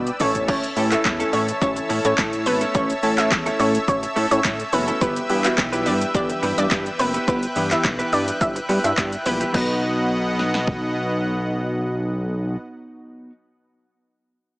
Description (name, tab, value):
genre	dance-pop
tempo	106 BPM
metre	4/4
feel	straight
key	unclear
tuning	A4 = 440 Hz
part	soft supersaw	sustained chords	0.0-12.6 s	B3 to E6	-26 LUFS	equal	sidechain pumping
part	chorused synth bass	bass	0.0-12.6 s	F#1 to B2	-24 LUFS	equal	sidechain pumping
part	deep house drum kit	drums	0.1-10.8 s	crash cymbal, handclaps, hi-hat, kick drum, shaker, snare drum, toms	-25 LUFS	equal	overdrive
part	analog pluck	melody	0.2-11.2 s	B3 to E5	-24 LUFS	equal	chorus, tape echo
part	glassy digital keys	accompaniment	0.2-13.3 s	E3 to B4	-28 LUFS	equal	chorus, phaser, sidechain pumping
part	direct-recorded clean electric guitar	riff	0.5-13.3 s	A3 to B4	-29 LUFS	right 1 dB	lush chorus
room	light reverb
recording	small speaker sound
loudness	-19 LUFS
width	side -22 dB against mid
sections	0.0-9.5 A section; 9.5-11.8 B section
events	drop 0.0-9.5; drum fill 0.0-0.5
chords	0.2 A; 5.0 Em; 9.5 B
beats	| 0.48 1.05 1.62 2.18 | 2.75 3.31 3.88 4.45 | 5.01 5.58 6.14 6.71 | 7.28 7.84 8.41 8.97 | 9.54 10.11 10.67 11.24